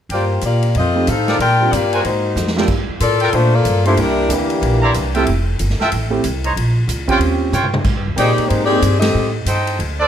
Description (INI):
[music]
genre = jazz, big band swing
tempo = 186 BPM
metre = 4/4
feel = swing 62% on 8ths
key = G minor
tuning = A4 = 440 Hz
[part]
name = warm saxophone section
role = melody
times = 0.1-5.2, 8.2-9.3 s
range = E3 to G5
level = -17 LUFS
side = left 4 dB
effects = none
[part]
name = clear trumpet section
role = stabs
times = 0.1-10.1 s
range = D4 to C6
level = -21 LUFS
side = right 2 dB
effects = none
[part]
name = upright bass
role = bass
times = 0.1-10.1 s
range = F1 to Bb2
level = -18 LUFS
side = equal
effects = none
[part]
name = swinging big-band drum kit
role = drums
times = 0.1-9.9 s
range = crash cymbal, hi-hat, kick drum, ride cymbal, snare drum, toms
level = -24 LUFS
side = equal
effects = none
[part]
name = clear concert grand piano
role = accompaniment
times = 1.0-8.8 s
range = G2 to G5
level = -21 LUFS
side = right 4 dB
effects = none
[sound]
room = light reverb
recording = none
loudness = -14 LUFS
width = side -9 dB against mid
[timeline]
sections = 0.1-2.7 A section; 2.7-10.1 B section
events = drum fill 2.4-2.7, 7.5-7.8; band accent 9.0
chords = 0.1 Gm7; 0.7 F7; 1.4 Bb6; 2.0 Ab9; 2.7 Gm9; 4.0 C9; 5.3 Fmaj9; 6.6 Bbmadd9; 7.2 Eb13; 7.8 Abmaj7; 9.1 Am7b5